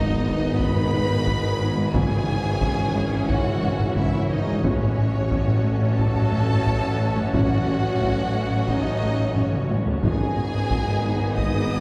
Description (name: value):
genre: cinematic, hybrid orchestral and electronic film score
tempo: 89 BPM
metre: 4/4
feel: straight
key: unclear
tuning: A4 = 440 Hz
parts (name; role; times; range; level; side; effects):
- warm symphonic violin section; melody; 0.0-11.8 s; C#5 to D#6; -34 LUFS; equal; none
- dark symphonic violin section; second line; 0.0-11.8 s; C#4 to D#5; -34 LUFS; equal; none
- rich symphonic viola section; accompaniment; 0.0-11.8 s; E3 to F#4; -35 LUFS; equal; none
- glassy FM pad; sustained chords; 0.4-11.8 s; D#3 to C#5; -34 LUFS; equal; none
- warm French horn section; sustained chords; 0.0-11.8 s; D#3 to C#4; -34 LUFS; equal; none
- harp-like synth pluck; arpeggios; 0.0-11.8 s; C#3 to G#4; -37 LUFS; equal; none
- rubbery square bass; riff; 0.0-11.8 s; G#2 to A3; -30 LUFS; equal; none
- clear tuba; bass; 0.0-11.8 s; G#1 to A1; -34 LUFS; equal; none
- rich symphonic cello section; bass; 0.0-11.8 s; G#2 to A2; -32 LUFS; equal; none
- rich symphonic double bass section; bass; 0.0-11.8 s; G#1 to A1; -33 LUFS; equal; none
- sub drop; sound effects; 0.0-1.9 s; none; -40 LUFS; equal; none
- taiko ensemble; drums; 0.1-11.8 s; none; -30 LUFS; equal; none
room: wet concert hall reverb, RT60 2.3 s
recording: heard from further back in the room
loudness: -22 LUFS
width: mono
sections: 0.0-11.8 A section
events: impact 0.0-1.9; drum fill 9.4-10.0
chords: 0.0 G#m; 1.9 C#m/G#; 4.6 F#m/A; 10.0 G#m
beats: 0.59 1.27 | 1.94 2.62 3.29 3.96 | 4.64 5.31 5.99 6.66 | 7.34 8.01 8.68 9.36 | 10.03 10.71 11.38